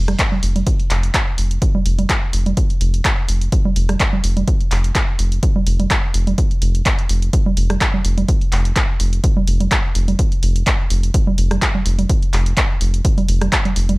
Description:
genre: acid house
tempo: 126 BPM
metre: 4/4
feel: swing 55% on 16ths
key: unclear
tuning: A4 = 440 Hz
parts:
  - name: round analog bass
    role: bass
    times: 0.0-14.0 s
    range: F1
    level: -17 LUFS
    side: equal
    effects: sidechain pumping
  - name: punchy analog drum machine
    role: drums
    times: 0.1-14.0 s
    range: congas, handclaps, hi-hat, rim click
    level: -20 LUFS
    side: right 2 dB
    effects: studio reverb
  - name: electronic kick drum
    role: drums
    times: 0.2-13.6 s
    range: none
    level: -18 LUFS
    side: equal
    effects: studio reverb
room: little or no reverb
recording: none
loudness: -14 LUFS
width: side -23 dB against mid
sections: 0.0-14.0 A section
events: none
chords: none

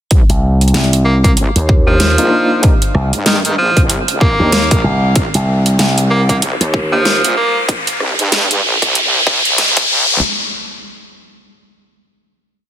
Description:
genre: glitch hop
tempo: 95 BPM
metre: 4/4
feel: swing 59% on 16ths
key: C minor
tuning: A4 = 442 Hz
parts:
  - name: wobble bass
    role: bass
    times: 0.1-10.2 s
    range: Bb1 to G2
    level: -20 LUFS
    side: equal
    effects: chorus, tube saturation, high-pass filter
  - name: dubstep drum kit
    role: drums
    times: 0.1-9.9 s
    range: hi-hat, rim click, snare drum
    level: -17 LUFS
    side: right 1 dB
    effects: none
  - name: electronic kick drum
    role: drums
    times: 0.1-9.9 s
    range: none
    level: -13 LUFS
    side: equal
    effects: none
  - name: riser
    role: sound effects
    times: 3.8-10.2 s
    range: none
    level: -17 LUFS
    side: equal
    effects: none
  - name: slap bass with an envelope filter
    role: bass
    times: 0.3-7.2 s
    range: C2 to Eb2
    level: -13 LUFS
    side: equal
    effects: none
  - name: edgy tenor saxophone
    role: melody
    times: 1.1-7.6 s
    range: Eb3 to Bb3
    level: -17 LUFS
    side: right 1 dB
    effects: vintage 12-bit sampler grit, digital delay
  - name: overdriven tine electric piano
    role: stabs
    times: 1.9-7.0 s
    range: Bb3 to G4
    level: -20 LUFS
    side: left 1 dB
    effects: fast tremolo, sidechain pumping, digital delay
room: light reverb, digital ambience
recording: dense, heavily limited modern master, high-pass filter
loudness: -10 LUFS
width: side -10 dB against mid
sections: 0.1-10.2 build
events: build-up 0.1-10.2; filter sweep 0.1-10.2; riser 3.8-10.2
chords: 0.1 Cm7

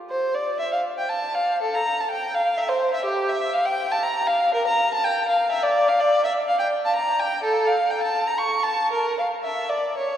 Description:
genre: classical, baroque-style suite movement for unaccompanied violin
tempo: 122 BPM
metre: 3/4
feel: uneven beats, rubato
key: F major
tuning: A4 = 440 Hz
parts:
  - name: warm violin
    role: solo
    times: 0.1-10.2 s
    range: G4 to C#6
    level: -20 LUFS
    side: equal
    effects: none
room: wet cathedral reverb, RT60 5.2 s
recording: heard from further back in the room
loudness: -20 LUFS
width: side -10 dB against mid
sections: 0.1-10.2 A section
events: none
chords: none

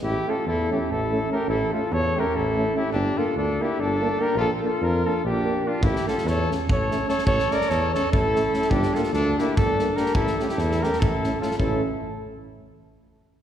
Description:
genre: balkan folk, Balkan brass band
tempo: 291 BPM (eighths)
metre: 7/8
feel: straight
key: A phrygian dominant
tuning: A4 = 436 Hz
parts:
  - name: warm flugelhorn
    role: melody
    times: 0.0-11.8 s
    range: F4 to D5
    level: -25 LUFS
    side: equal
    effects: none
  - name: mellow trumpet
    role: second line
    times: 0.0-11.8 s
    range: D4 to Bb4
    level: -29 LUFS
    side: left 2 dB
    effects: none
  - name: mellow tuba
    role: bass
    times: 0.0-11.8 s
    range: G1 to F2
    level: -27 LUFS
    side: equal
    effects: none
  - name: warm French horn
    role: accompaniment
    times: 0.3-11.8 s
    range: C#4 to D4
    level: -32 LUFS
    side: left 1 dB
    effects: none
  - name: warm euphonium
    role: accompaniment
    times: 0.3-11.8 s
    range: A3 to Bb3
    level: -31 LUFS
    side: right 2 dB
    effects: none
  - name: loose indie drum kit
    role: percussion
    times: 5.8-11.8 s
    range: kick drum, snare drum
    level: -27 LUFS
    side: equal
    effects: none
room: wet concert hall reverb, RT60 2.0 s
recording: heard from further back in the room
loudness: -21 LUFS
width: side -10 dB against mid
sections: 0.0-11.6 A section; 11.6-13.0 B section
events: none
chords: 0.0 A; 2.9 Gm; 4.4 Bb; 5.8 A; 8.7 Gm; 10.1 A

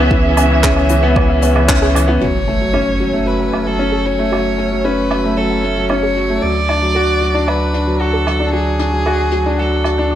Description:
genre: piano and strings electronica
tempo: 114 BPM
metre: 4/4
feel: straight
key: F# minor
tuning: A4 = 440 Hz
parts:
  - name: muted studio string section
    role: sustained chords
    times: 0.0-10.2 s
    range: D3 to G#5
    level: -25 LUFS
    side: right 2 dB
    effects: none
  - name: soft round pluck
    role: arpeggios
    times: 0.0-10.2 s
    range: E4 to F#6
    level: -27 LUFS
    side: equal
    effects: none
  - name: warm baby grand piano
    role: riff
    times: 0.0-10.2 s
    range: E3 to F#4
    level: -16 LUFS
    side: left 1 dB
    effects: digital delay
  - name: warm sub bass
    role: bass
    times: 0.0-10.2 s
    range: F#1 to D2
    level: -19 LUFS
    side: equal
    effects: sidechain pumping
  - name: electronic kick drum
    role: drums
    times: 0.1-1.8 s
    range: none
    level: -17 LUFS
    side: equal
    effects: overdrive
  - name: jazz brush drum kit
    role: drums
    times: 0.4-10.0 s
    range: handclaps, hi-hat, woodblock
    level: -22 LUFS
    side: right 2 dB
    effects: low-pass filter on hats, low-pass filter on snare, low-pass filter on perc, low-pass filter on room
  - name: dark violin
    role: melody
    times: 2.2-10.2 s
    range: G#4 to D5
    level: -20 LUFS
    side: equal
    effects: digital delay
  - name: impact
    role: sound effects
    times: 2.2-4.3 s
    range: none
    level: -24 LUFS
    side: right 1 dB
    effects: none
room: light reverb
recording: none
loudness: -13 LUFS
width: side -11 dB against mid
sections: 0.0-2.2 A section; 2.2-10.2 B section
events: band accent 1.7; impact 2.2-4.3; filter sweep on drum 2.2-10.2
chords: 0.0 C#m7; 2.2 F#madd9; 6.4 D

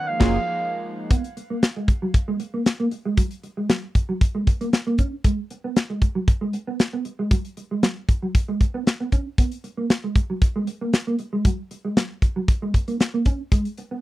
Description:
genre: early-eighties boogie funk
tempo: 116 BPM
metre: 4/4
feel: straight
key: unclear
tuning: A4 = 440 Hz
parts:
  - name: warm oboe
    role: melody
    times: 0.0-0.8 s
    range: E#5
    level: -28 LUFS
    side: right 3 dB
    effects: tape echo
  - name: brassy analog pad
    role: sustained chords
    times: 0.0-1.1 s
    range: E#3 to D#4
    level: -33 LUFS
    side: left 2 dB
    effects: chorus
  - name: modern studio drum kit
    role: drums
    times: 0.2-13.9 s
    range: crash cymbal, hi-hat, kick drum, snare drum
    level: -18 LUFS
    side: equal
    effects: none
  - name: mellow electric guitar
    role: riff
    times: 1.1-14.0 s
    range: F#3 to C#4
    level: -26 LUFS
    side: right 2 dB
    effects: ensemble chorus
room: little or no reverb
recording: dry, close 1970s-style studio recording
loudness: -20 LUFS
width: side -17 dB against mid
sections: 0.0-1.1 A section; 1.1-14.0 B section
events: band accent 0.0-1.1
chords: 0.1 F#maj9; 1.1 B5; 3.2 F#; 5.0 C#7sus4; 9.4 B5; 11.5 F#; 13.3 G#m

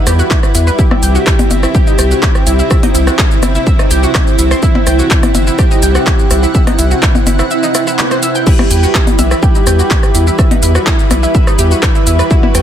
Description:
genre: melodic techno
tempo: 125 BPM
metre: 4/4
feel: straight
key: unclear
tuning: A4 = 440 Hz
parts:
  - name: lush unison pad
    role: sustained chords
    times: 0.0-12.6 s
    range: C3 to F#5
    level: -19 LUFS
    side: right 1 dB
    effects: chorus, vintage 12-bit sampler grit, sidechain pumping
  - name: analog pluck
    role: arpeggios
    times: 0.0-12.6 s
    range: B3 to G6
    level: -19 LUFS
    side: equal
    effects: chorus, sidechain pumping, tape echo
  - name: granular cloud pad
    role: texture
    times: 0.0-12.6 s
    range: E4 to F#5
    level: -20 LUFS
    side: right 3 dB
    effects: built-in reverb, sidechain pumping
  - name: round analog bass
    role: bass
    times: 0.1-12.6 s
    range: G1 to E2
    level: -12 LUFS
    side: equal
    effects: sidechain pumping
  - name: techno drum kit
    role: drums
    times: 0.1-12.6 s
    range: crash cymbal, handclaps, hi-hat, percussion blips, rim click, shaker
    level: -16 LUFS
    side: left 2 dB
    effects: soft clipping on snare
  - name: electronic kick drum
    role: drums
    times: 0.3-12.4 s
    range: none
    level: -11 LUFS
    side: equal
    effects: none
  - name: wide unison lead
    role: melody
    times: 0.8-12.6 s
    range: E4 to G4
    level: -20 LUFS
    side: equal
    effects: sidechain pumping, ping-pong delay
room: little or no reverb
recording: dense, heavily limited modern master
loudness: -8 LUFS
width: side -10 dB against mid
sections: 0.0-12.6 A section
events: none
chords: 0.0 Em; 0.8 C; 8.5 Em

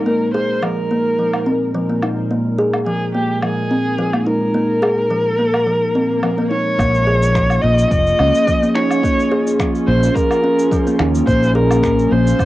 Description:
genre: organic downtempo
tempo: 107 BPM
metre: 4/4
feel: swing 53% on 16ths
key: Bb minor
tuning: A4 = 439 Hz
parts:
  - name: warm kamancheh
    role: melody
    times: 0.0-12.4 s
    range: G4 to Eb5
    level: -19 LUFS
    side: equal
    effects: cassette tape, analog delay
  - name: warbly tape-like pad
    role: sustained chords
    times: 0.0-12.4 s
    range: Bb2 to Bb4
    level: -21 LUFS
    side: equal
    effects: chorus, built-in reverb, sidechain pumping, cassette tape
  - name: kalimba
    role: arpeggios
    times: 0.1-12.4 s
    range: F3 to Ab4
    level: -20 LUFS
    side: equal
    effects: cassette tape
  - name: electronic woodblock, shaker and finger snaps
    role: drums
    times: 0.6-12.4 s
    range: none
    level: -26 LUFS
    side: equal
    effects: cassette tape
  - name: swell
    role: sound effects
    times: 5.9-6.8 s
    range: none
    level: -27 LUFS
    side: left 5 dB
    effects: none
  - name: fretless electric bass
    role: bass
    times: 6.8-12.4 s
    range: F1 to Eb2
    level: -16 LUFS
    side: equal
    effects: ensemble chorus, sidechain pumping
  - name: electronic kick drum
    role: drums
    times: 6.8-12.4 s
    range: none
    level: -21 LUFS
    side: equal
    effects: overdrive, cassette tape
room: wet booth ambience, RT60 0.3 s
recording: home recording on cassette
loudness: -14 LUFS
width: side -16 dB against mid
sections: 0.0-6.8 A section; 6.8-12.4 B section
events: swell 5.9-6.8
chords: 0.0 Absus2/Bb; 6.8 Bbm7

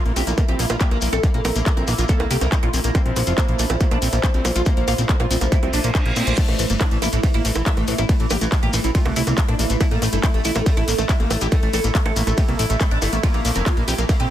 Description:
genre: psychedelic trance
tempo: 140 BPM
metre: 4/4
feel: straight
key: A phrygian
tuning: A4 = 439 Hz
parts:
  - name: bubbling stepped-filter texture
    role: sustained chords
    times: 0.0-14.3 s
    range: A3 to E4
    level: -29 LUFS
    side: right 1 dB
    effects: chorus, built-in reverb, sidechain pumping
  - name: oud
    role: melody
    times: 0.1-14.3 s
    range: E3 to Bb4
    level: -26 LUFS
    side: right 1 dB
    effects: phaser, sidechain pumping, dub echo
  - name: screaming distorted acid line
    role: riff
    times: 0.1-14.3 s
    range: A3 to F4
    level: -29 LUFS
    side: moving between left 6 dB and right 6 dB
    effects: distortion, chorus, auto-pan, sidechain pumping, dub echo
  - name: fat analog bass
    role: bass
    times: 0.1-14.3 s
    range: F1 to Bb2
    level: -22 LUFS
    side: equal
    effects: none
  - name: techno drum kit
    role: drums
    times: 0.1-14.3 s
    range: bongos, crash cymbal, handclaps, hi-hat, ride cymbal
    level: -27 LUFS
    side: right 1 dB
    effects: none
  - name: shekere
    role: percussion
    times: 0.2-14.2 s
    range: none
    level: -30 LUFS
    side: left 5 dB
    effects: none
  - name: electronic kick drum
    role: drums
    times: 0.4-14.2 s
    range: none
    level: -19 LUFS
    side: equal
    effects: distortion
  - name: reverse cymbal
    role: sound effects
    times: 5.7-6.4 s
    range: none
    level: -28 LUFS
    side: right 3 dB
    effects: none
room: digital ambience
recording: dense, heavily limited modern master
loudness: -17 LUFS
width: side -12 dB against mid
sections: 0.0-14.3 A section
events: reverse cymbal 5.7-6.4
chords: 0.0 Bb5; 6.4 A5; 13.2 Bb5

